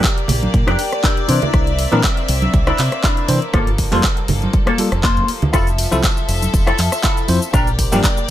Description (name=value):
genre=nu-disco, nu disco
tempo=120 BPM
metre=4/4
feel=swing 55% on 16ths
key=F major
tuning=A4 = 440 Hz
part: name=rich studio string section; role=sustained chords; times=0.0-8.3 s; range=F3 to E5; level=-24 LUFS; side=left 1 dB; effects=sidechain pumping
part: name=electric guitar with an envelope filter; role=riff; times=0.0-8.2 s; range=Bb3 to G5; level=-22 LUFS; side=left 2 dB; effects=lush chorus, dub echo
part: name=electronic kick drum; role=drums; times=0.0-8.1 s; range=none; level=-18 LUFS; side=equal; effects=none
part: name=pop drum kit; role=drums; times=0.0-8.3 s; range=handclaps, hi-hat, rim click, shaker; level=-22 LUFS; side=left 1 dB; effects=none
part: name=deep dub fingered electric bass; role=bass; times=0.3-8.0 s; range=F1 to C3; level=-19 LUFS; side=equal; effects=none
part: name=congas and tambourine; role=percussion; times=0.3-8.1 s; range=none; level=-25 LUFS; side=right 3 dB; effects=none
part: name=bell-like tine electric piano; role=accompaniment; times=1.3-8.0 s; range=E3 to C5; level=-22 LUFS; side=equal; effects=medium stereo tremolo, sidechain pumping, dub echo
room=little or no reverb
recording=none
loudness=-14 LUFS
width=side -12 dB against mid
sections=0.0-8.3 A section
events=clean electric guitar fill 0.5-1.5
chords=0.0 Bb6; 1.3 C9; 3.5 Gm9; 5.5 Fmaj7; 7.5 Bb6